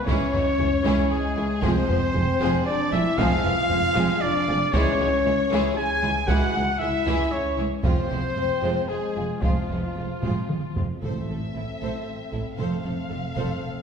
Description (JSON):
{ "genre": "cinematic, epic orchestral film score", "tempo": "116 BPM", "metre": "3/4", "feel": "straight", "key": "unclear", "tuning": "A4 = 440 Hz", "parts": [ { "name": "warm symphonic violin section", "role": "melody", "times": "0.0-13.8 s", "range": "F4 to G#5", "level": "-32 LUFS", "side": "left 4 dB", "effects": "none" }, { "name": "dark French horn section", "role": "sustained chords", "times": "0.0-13.8 s", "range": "F3 to G#4", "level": "-28 LUFS", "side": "left 3 dB", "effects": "none" }, { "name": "warm trumpet", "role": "stabs", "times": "0.0-10.8 s", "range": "F4 to G#5", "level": "-28 LUFS", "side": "right 1 dB", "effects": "none" }, { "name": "rich symphonic violin section", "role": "second line", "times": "0.1-13.6 s", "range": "B3 to C5", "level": "-34 LUFS", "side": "left 2 dB", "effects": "none" }, { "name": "rich symphonic viola section", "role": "accompaniment", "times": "0.1-13.6 s", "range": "E3 to A4", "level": "-32 LUFS", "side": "right 2 dB", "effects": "none" }, { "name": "rich symphonic cello section", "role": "bass", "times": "0.1-13.5 s", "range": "C#2 to A2", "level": "-30 LUFS", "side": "right 3 dB", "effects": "none" }, { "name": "warm chamber double bass section", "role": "bass", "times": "0.1-13.4 s", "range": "F1 to C#2", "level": "-31 LUFS", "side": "right 2 dB", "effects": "none" }, { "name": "taiko ensemble", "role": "drums", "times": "0.1-12.0 s", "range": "none", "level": "-27 LUFS", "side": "equal", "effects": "none" }, { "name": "timpani", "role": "percussion", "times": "11.0-11.8 s", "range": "A2", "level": "-34 LUFS", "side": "right 1 dB", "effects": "none" } ], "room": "wet scoring stage reverb, RT60 1.6 s", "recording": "heard from further back in the room", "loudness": "-21 LUFS", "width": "side -6 dB against mid", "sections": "0.0-11.0 A section; 11.0-13.8 B section", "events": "drum fill 10.2-11.0", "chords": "0.0 C#m; 1.6 Fm; 4.7 C#m; 7.8 Fm; 11.0 Am; 12.6 F", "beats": "| 0.07 0.59 1.11 | 1.63 2.15 2.67 | 3.18 3.70 4.21 | 4.73 5.25 5.76 | 6.28 6.80 7.32 | 7.84 8.36 8.88 | 9.42 9.96 10.49 | 11.03 11.55 12.07 | 12.59 13.11 13.62" }